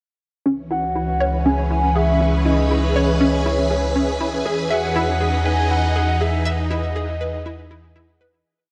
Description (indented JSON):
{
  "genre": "ambient, sequencer-driven space music",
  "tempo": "120 BPM",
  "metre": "4/4",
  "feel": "straight",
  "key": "C# minor",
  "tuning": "A4 = 441 Hz",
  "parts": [
    { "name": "phased string machine", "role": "sustained chords", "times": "0.7-8.5 s", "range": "E3 to B4", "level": "-25 LUFS", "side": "equal", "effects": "ensemble chorus, phaser" },
    { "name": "hollow square pluck", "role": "riff", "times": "0.5-8.3 s", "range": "C#4 to E5", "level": "-26 LUFS", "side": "equal", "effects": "ensemble chorus, tape echo" },
    { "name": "warm sub bass", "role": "bass", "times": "0.5-8.4 s", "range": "C#2 to E2", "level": "-24 LUFS", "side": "equal", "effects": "none" },
    { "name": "soft octave-layered synth lead", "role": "melody", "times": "0.7-8.0 s", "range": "C#5 to G#5", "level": "-26 LUFS", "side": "equal", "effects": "chorus, phaser, tape echo" }
  ],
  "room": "wet huge ambient reverb, RT60 7.5 s",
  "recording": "cassette tape",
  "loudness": "-20 LUFS",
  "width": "mono",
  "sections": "0.5-8.5 A section",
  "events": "fade-out 5.8-8.5",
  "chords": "0.5 C#m7; 4.5 Emaj7"
}